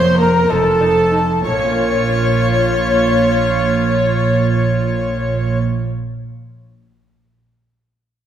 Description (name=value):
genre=classical, baroque-style concerto movement with solo episodes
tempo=62 BPM (dotted quarters)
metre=6/8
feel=straight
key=Bb minor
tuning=A4 = 439 Hz
part: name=bright tenor recorder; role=melody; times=0.0-5.6 s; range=A4 to Db5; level=-18 LUFS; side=left 1 dB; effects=none
part: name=warm chamber violin section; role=melody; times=0.0-5.6 s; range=A5 to Db6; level=-25 LUFS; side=left 2 dB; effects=none
part: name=warm chamber violin section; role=second line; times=0.0-5.6 s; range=A4 to Db5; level=-21 LUFS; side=left 2 dB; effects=none
part: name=lute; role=accompaniment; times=0.0-5.9 s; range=F2 to Db5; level=-28 LUFS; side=right 1 dB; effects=none
part: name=rich chamber double bass section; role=bass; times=0.0-5.6 s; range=F1 to Bb1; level=-20 LUFS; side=right 3 dB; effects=none
part: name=warm studio cello section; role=bass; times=0.0-5.6 s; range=F2 to Bb2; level=-21 LUFS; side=right 3 dB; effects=none
part: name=dark chamber viola section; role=accompaniment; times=0.2-5.6 s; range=Bb3 to F4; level=-25 LUFS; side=equal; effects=none
room=wet scoring stage reverb, RT60 1.5 s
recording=recorded in a church or concert hall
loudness=-13 LUFS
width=side -10 dB against mid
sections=0.0-1.4 A section; 1.4-5.3 B section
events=slowing down 0.0-1.4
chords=0.5 F7; 1.4 Bbm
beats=0.49 | 1.44 2.41 | 3.37 4.33